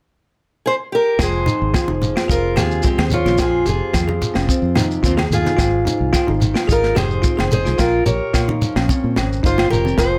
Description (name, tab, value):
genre	highlife guitar band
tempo	109 BPM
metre	4/4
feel	straight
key	F minor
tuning	A4 = 440 Hz
part	picked old ladder-braced acoustic guitar	melody	0.7-10.2 s	C4 to Db5	-23 LUFS	equal	none
part	nylon-string guitar	accompaniment	1.2-10.2 s	F2 to Ab4	-31 LUFS	equal	none
part	bell-like tine electric piano	arpeggios	1.2-10.2 s	C4 to Ab4	-25 LUFS	equal	plate reverb
part	fingered electric bass	bass	1.2-10.2 s	F1 to Bb2	-24 LUFS	equal	none
part	tight funk drum kit	drums	1.2-10.1 s	kick drum, snare drum	-23 LUFS	equal	none
part	agogo bells	percussion	1.2-10.1 s	none	-32 LUFS	equal	none
part	shekere	percussion	1.2-10.1 s	none	-26 LUFS	equal	none
part	congas	percussion	1.5-10.0 s	none	-28 LUFS	equal	none
room	moderate small room reverb, RT60 0.5 s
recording	none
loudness	-18 LUFS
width	mono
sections	0.0-1.2 A section; 1.2-10.2 B section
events	none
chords	0.0 Gm; 1.2 Fm; 5.6 Ab6; 7.8 F5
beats	0.09 0.65 | 1.20 1.75 2.29 2.85 | 3.40 3.94 4.50 5.04 | 5.59 6.14 6.69 7.24 | 7.79 8.34 8.89 9.44 | 9.99